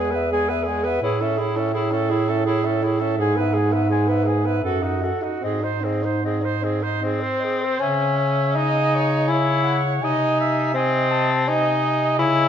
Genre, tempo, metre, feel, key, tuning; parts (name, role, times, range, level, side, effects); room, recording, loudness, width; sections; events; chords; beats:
classical, lyrical piece for single-reed quartet; 74-86 BPM; 3/4; rubato; C# minor; A4 = 440 Hz
mellow clarinet; melody; 0.0-12.5 s; B#4 to A5; -27 LUFS; left 8 dB
bright alto saxophone; second line; 0.0-12.5 s; F#4 to E5; -25 LUFS; right 7 dB
warm tenor saxophone; accompaniment; 0.0-12.5 s; G#3 to F#4; -23 LUFS; left 2 dB
mellow bass clarinet; bass; 0.0-12.5 s; E2 to C#3; -23 LUFS; right 2 dB
wet recital hall reverb, RT60 1.3 s; -19 LUFS; side -9 dB against mid
0.0-7.8 A section; 7.8-12.5 B section
0.0 E; 1.0 Amaj7; 3.2 E/G#; 4.6 D#dim/F#; 5.4 G#; 7.8 C#m; 10.0 G#/B#
0.31 | 1.02 1.73 2.46 | 3.18 3.89 4.63 | 5.42 6.22 7.02 | 7.81 8.55 9.29 | 10.02 10.75 11.48 | 12.19